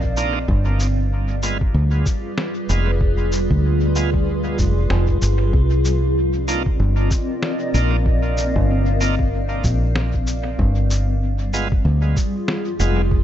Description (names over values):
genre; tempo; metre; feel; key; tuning
ambient dub; 95 BPM; 4/4; swing 58% on 16ths; C minor; A4 = 438 Hz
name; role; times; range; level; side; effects
granular cloud pad; sustained chords; 0.0-13.2 s; G3 to F5; -24 LUFS; equal; built-in reverb
fingered electric bass; bass; 0.0-13.2 s; F1 to D2; -18 LUFS; equal; none
electronic kick drum; drums; 0.0-13.2 s; none; -21 LUFS; equal; small room ambience
bright tonewheel organ; stabs; 0.2-13.0 s; Ab3 to F4; -29 LUFS; right 4 dB; overdrive, slow rotary speaker, dub echo
electronic shaker and snare drum; drums; 0.2-12.9 s; none; -29 LUFS; left 1 dB; small room ambience, dub echo
room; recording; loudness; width
little or no reverb; echo-heavy mix, nothing above 8.0 kHz; -17 LUFS; side -11 dB against mid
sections
0.0-13.2 A section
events
none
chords
0.5 G7b9; 5.5 Cm11; 10.6 G7b9